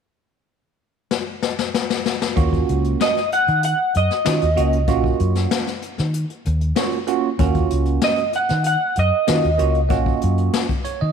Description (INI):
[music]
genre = straight-eighth soul blues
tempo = 96 BPM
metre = 4/4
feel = straight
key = Eb minor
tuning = A4 = 440 Hz
[part]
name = jazz brush drum kit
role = drums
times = 1.1-11.0 s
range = hi-hat, kick drum, snare drum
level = -23 LUFS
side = left 6 dB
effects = none
[part]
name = bell-like tine electric piano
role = accompaniment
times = 2.4-11.1 s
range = Bb3 to Eb5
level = -23 LUFS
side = right 11 dB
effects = phaser
[part]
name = vintage muted fingered electric bass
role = bass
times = 2.4-11.1 s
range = Bb1 to Eb3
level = -20 LUFS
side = left 1 dB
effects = none
[part]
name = electric guitar through a small old amp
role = melody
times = 3.0-10.8 s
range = Eb5 to Gb5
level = -20 LUFS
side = right 1 dB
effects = analog chorus
[sound]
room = light reverb, small room ambience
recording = 1960s-style stereo with parts hard left and right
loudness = -17 LUFS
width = side -7 dB against mid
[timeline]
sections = 0.0-2.4 A section; 2.4-11.1 B section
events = drum fill 1.1-2.4; tine electric piano fill 10.5-11.1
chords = 0.0 N.C.; 2.4 Ebm9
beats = 0.50 1.12 1.75 | 2.38 3.01 3.63 4.26 | 4.89 5.52 6.15 6.78 | 7.40 8.03 8.66 9.29 | 9.92 10.55